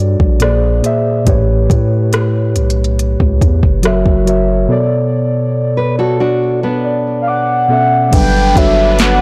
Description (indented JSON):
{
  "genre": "contemporary R&B",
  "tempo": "70 BPM",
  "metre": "4/4",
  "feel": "straight",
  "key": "B minor",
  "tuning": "A4 = 440 Hz",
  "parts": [
    { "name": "muted felt-like synth keys", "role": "accompaniment", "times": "0.0-9.2 s", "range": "A2 to D6", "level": "-17 LUFS", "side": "equal", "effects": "chorus" },
    { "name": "long sustained 808-style bass", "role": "bass", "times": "0.0-9.2 s", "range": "F#1 to A2", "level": "-17 LUFS", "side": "equal", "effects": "none" },
    { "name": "smooth R&B drum kit", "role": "drums", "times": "0.2-9.2 s", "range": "hi-hat, kick drum, rim click, snare drum", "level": "-17 LUFS", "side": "equal", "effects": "overdrive" },
    { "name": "nylon-string guitar", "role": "arpeggios", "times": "5.8-7.9 s", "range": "B3 to B4", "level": "-19 LUFS", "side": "equal", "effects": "digital delay" },
    { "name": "mellow horn-like synth lead", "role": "melody", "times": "7.2-9.2 s", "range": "E5 to G5", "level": "-15 LUFS", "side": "equal", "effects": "chorus, digital delay" },
    { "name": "clear studio string section", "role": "sustained chords", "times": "8.1-9.2 s", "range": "B3 to B4", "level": "-22 LUFS", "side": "equal", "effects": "none" },
    { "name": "downlifter", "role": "sound effects", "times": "8.1-9.2 s", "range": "none", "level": "-27 LUFS", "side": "equal", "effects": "none" }
  ],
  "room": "little or no reverb",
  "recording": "blown-out, overdriven recording, overdrive",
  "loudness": "-13 LUFS",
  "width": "mono",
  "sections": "0.0-8.1 A section; 8.1-9.2 B section",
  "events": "synth keys fill 6.4-8.1",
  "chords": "0.4 A#9; 1.3 A7; 3.8 F#7; 4.7 Bm7; 8.1 Gmaj7"
}